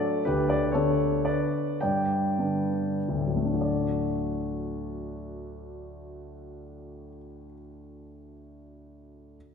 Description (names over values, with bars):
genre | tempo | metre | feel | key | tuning
classical, piano waltz | 90-129 BPM | 3/4 | rubato | D major | A4 = 438 Hz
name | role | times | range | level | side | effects
warm grand piano | solo | 0.0-9.4 s | D2 to G5 | -27 LUFS | left 1 dB | none
room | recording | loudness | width
wet concert hall reverb, RT60 2.0 s | heard from further back in the room | -25 LUFS | side -6 dB against mid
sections
0.0-3.6 A section; 3.6-7.2 B section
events
slowing down 0.0-3.6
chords
0.3 G/D; 3.6 D